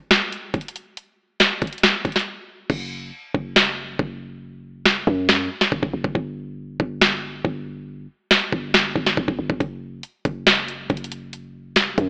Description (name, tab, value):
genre	hip hop, trap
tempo	139 BPM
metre	4/4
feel	half-time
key	unclear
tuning	A4 = 438 Hz
part	trap drum kit	drums	0.1-12.1 s	crash cymbal, hi-hat, kick drum, snare drum	-17 LUFS	equal	none
part	warm 808-style bass	bass	2.7-12.1 s	F#1 to F#2	-28 LUFS	equal	none
room	light reverb, digital ambience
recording	AM radio sound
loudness	-18 LUFS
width	side -31 dB against mid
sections	0.0-2.7 A section; 2.7-12.1 B section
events	break 2.3-2.7; hi-hats muted 2.7-9.6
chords	none